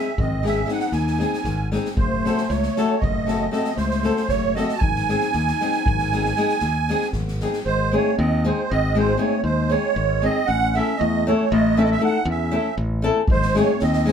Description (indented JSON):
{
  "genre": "balkan folk, Balkan wedding band",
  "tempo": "233 BPM (eighths)",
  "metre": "11/8",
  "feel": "straight",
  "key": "G# phrygian dominant",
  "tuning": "A4 = 440 Hz",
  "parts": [
    { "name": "musette accordion", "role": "melody", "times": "0.0-14.1 s", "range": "B#4 to A5", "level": "-24 LUFS", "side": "right 7 dB", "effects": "none" },
    { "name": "dark clarinet", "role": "second line", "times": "0.0-14.1 s", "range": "G#3 to F#4", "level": "-27 LUFS", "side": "left 5 dB", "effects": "none" },
    { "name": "flamenco guitar", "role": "accompaniment", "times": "0.0-14.1 s", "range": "G#3 to A4", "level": "-23 LUFS", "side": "left 3 dB", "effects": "none" },
    { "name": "modern bright fingered electric bass", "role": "bass", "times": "0.2-14.1 s", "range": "F#1 to E2", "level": "-24 LUFS", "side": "equal", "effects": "none" },
    { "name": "street-band drum kit", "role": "percussion", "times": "0.2-7.6, 13.3-14.1 s", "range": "kick drum, snare drum", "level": "-27 LUFS", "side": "equal", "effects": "none" }
  ],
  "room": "wet small room reverb, RT60 0.6 s",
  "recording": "band playing live in one room",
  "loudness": "-18 LUFS",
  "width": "side -7 dB against mid",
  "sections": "0.0-7.7 A section; 7.7-14.1 B section",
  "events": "none",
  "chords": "0.0 G#; 2.0 F#m; 4.8 G#; 10.5 A; 13.3 G#",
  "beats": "0.15 0.41 0.67 0.93 1.19 1.45 1.71 | 1.97 2.23 2.49 2.75 3.00 3.26 3.52 3.78 4.04 4.30 4.56 | 4.82 5.07 5.33 5.59 5.85 6.11 6.37 6.62 6.88 7.14 7.40 | 7.65 7.91 8.17 8.43 8.68 8.94 9.19 9.45 9.71 9.96 10.22 | 10.47 10.73 10.99 11.24 11.50 11.75 12.01 12.26 12.52 12.77 13.03 | 13.28 13.54 13.79 14.04"
}